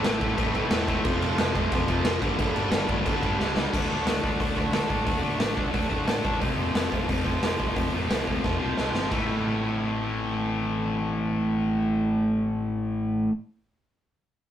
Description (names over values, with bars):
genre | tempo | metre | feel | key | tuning
punk rock | 178 BPM | 4/4 | straight | A minor | A4 = 437 Hz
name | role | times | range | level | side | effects
cranked stack guitar | riff | 0.0-13.3 s | F2 to G4 | -31 LUFS | right 5 dB | overdrive
distorted electric guitar | riff | 0.0-13.3 s | F2 to D4 | -27 LUFS | left 3 dB | overdrive
overdriven semi-hollow guitar | riff | 0.0-3.7 s | F2 to A3 | -34 LUFS | right 1 dB | none
raw garage drum kit | drums | 0.0-9.2 s | crash cymbal, hi-hat, kick drum, snare drum | -27 LUFS | right 1 dB | none
overdriven picked electric bass | bass | 0.1-13.3 s | E1 to D3 | -33 LUFS | equal | none
room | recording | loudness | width
moderate studio ambience, RT60 0.5 s | rough rehearsal-room recording, tube saturation | -23 LUFS | side -10 dB against mid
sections
0.0-3.7 A section; 3.7-9.1 B section; 9.1-11.8 C section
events
drum fill 3.4-3.7, 8.4-9.1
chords
0.0 Am; 1.0 F; 2.2 G; 3.7 D; 6.4 F; 9.1 Am